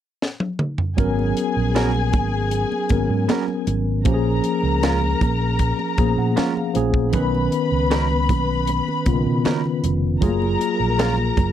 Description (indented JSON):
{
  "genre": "lush 1970s-style soul",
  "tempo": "78 BPM",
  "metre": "4/4",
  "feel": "straight",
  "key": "G# dorian",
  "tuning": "A4 = 440 Hz",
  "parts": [
    { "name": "tight funk drum kit", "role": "drums", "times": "0.2-11.5 s", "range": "hi-hat, kick drum, snare drum, toms", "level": "-22 LUFS", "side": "equal", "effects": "none" },
    { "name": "dark studio string section", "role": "second line", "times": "1.0-11.5 s", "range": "G#4 to B5", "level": "-26 LUFS", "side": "left 4 dB", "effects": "none" },
    { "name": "tine electric piano", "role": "accompaniment", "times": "1.0-11.5 s", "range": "C#3 to A#5", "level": "-22 LUFS", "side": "left 1 dB", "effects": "medium stereo tremolo" },
    { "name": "fingered electric bass", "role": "bass", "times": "1.0-11.5 s", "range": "E#1 to B2", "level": "-22 LUFS", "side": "equal", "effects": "none" },
    { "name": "congas", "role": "percussion", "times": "1.0-11.5 s", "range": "none", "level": "-30 LUFS", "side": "right 6 dB", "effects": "none" },
    { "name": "electric guitar through a small old amp", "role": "riff", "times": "1.8-11.1 s", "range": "F#3 to A#4", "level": "-26 LUFS", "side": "right 9 dB", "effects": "none" }
  ],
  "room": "light reverb",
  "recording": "dry, close 1970s-style studio recording",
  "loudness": "-18 LUFS",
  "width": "side -10 dB against mid",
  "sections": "1.0-11.5 A section",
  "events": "drum fill 0.2-1.0; tine electric piano fill 5.6-7.1",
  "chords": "0.0 N.C.; 1.0 G#m11; 4.1 A#m7; 7.1 Badd9; 10.2 F#maj9",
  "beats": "0.22 | 0.99 1.75 2.52 3.29 | 4.06 4.83 5.60 6.37 | 7.14 7.91 8.68 9.45 | 10.22 10.99"
}